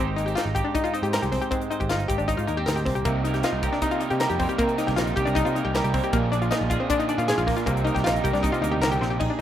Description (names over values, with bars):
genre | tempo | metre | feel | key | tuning
math rock and midwest emo | 156 BPM | 4/4 | straight | C minor | A4 = 440 Hz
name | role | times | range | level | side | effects
twelve-string electric guitar | accompaniment | 0.0-9.4 s | Ab2 to Bb4 | -30 LUFS | right 8 dB | wide subtle chorus
analog pluck | arpeggios | 0.0-9.4 s | Bb3 to Bb4 | -25 LUFS | left 3 dB | chorus, slapback echo
picked electric bass | bass | 0.0-9.3 s | G1 to C3 | -27 LUFS | right 1 dB | none
crisp fusion drum kit | drums | 0.2-9.3 s | crash cymbal, hi-hat, kick drum, snare drum | -30 LUFS | equal | none
crunchy overdriven guitar | riff | 3.0-9.2 s | Bb2 to Ab4 | -31 LUFS | right 2 dB | none
room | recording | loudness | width
light reverb, small room ambience | rough home demo mix | -21 LUFS | side -10 dB against mid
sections
0.0-9.2 A section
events
drum fill 9.0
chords
0.0 Abmaj7; 3.1 Cm7; 6.1 Bb7; 7.7 Cm7